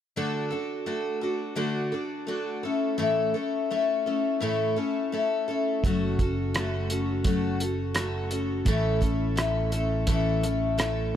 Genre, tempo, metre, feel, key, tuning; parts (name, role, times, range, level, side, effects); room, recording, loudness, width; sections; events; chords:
folk rock and heartland rock; 85 BPM; 4/4; straight; A major; A4 = 440 Hz
picked twelve-string acoustic guitar; accompaniment; 0.2-11.1 s; A2 to A4; -26 LUFS; left 2 dB
fingered electric bass; bass; 5.8-11.2 s; F#1 to A1; -29 LUFS; right 1 dB
cloth-damped thuddy drum kit; drums; 5.8-11.0 s; hi-hat, kick drum, rim click; -28 LUFS; right 1 dB
light reverb; -24 LUFS; side -10 dB against mid
0.2-11.2 A section
0.2 D; 2.6 A; 5.8 F#m; 8.7 A